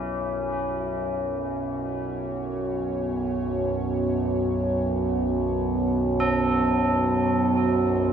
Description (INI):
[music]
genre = dark ambient drone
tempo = free time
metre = none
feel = none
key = unclear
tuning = A4 = 440 Hz
[part]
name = dark analog pad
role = sustained chords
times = 0.1-8.1 s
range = B3 to C#5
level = -26 LUFS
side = right 2 dB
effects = chorus
[part]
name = tubular bells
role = arpeggios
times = 0.0-8.1 s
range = C#4 to A4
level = -30 LUFS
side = equal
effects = diffuse ambient delay
[part]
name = overtone-sweeping drone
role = drone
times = 0.0-8.1 s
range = B1 to F#2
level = -27 LUFS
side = right 1 dB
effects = chorus, built-in reverb
[sound]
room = wet huge ambient reverb, RT60 7.5 s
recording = dark, warm production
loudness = -23 LUFS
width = side -8 dB against mid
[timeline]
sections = 0.0-8.1 A section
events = fade-in on synth drone 0.0-8.1; fade-in on analog synth pad 0.0-8.1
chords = 0.0 Bsus2